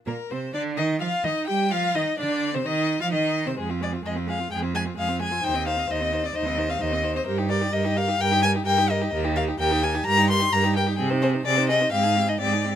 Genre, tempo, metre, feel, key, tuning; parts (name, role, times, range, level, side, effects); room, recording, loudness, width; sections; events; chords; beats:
quick classical-period movement for string quartet; 129 BPM; 4/4; rubato; C minor, Eb major from 7.3 s; A4 = 442 Hz
rich violin; melody; 0.1-12.8 s; F4 to G5; -31 LUFS; left 6 dB
rich violin; second line; 0.1-12.8 s; Bb4 to C6; -24 LUFS; left 3 dB
rich viola; accompaniment; 0.1-12.8 s; Ab3 to G4; -30 LUFS; right 4 dB
clear cello; bass; 0.1-12.8 s; Eb2 to G3; -26 LUFS; right 4 dB
little or no reverb; close, detailed microphones; -21 LUFS; side -10 dB against mid
0.0-12.8 A section
0.0 Cm; 1.7 Cmadd9; 3.6 Fm; 5.4 Cm/Eb; 7.3 Eb/G; 9.1 Eb; 10.1 Eb/G; 11.0 Ab/C; 11.9 Abmaj7
0.30 0.77 1.24 | 1.71 2.19 2.66 3.12 | 3.58 4.05 4.51 4.97 | 5.43 5.89 6.35 6.80 | 7.26 7.72 8.18 8.65 | 9.12 9.59 10.05 10.52 | 10.98 11.46 11.93 12.40